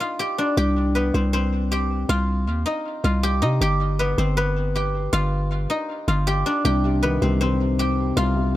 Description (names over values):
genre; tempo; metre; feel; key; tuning
hip hop, trap; 158 BPM; 4/4; half-time; C harmonic minor; A4 = 440 Hz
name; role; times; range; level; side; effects
guzheng; melody; 0.0-8.6 s; B3 to G5; -23 LUFS; left 1 dB; tape echo
growling 808-style bass; bass; 0.6-8.6 s; G1 to C3; -22 LUFS; equal; none
dark concert grand piano; accompaniment; 6.6-8.6 s; C3 to Eb3; -24 LUFS; left 3 dB; tape echo
room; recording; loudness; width
studio ambience; echo-heavy mix; -19 LUFS; side -14 dB against mid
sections
0.6-8.6 A section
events
stop 0.0-0.6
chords
0.0 G; 0.6 Cm; 3.6 G; 6.6 Cm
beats
0.19 | 0.57 0.95 1.33 1.71 | 2.09 2.47 2.85 3.23 | 3.61 3.99 4.37 4.75 | 5.13 5.51 5.89 6.27 | 6.65 7.03 7.41 7.79 | 8.17 8.55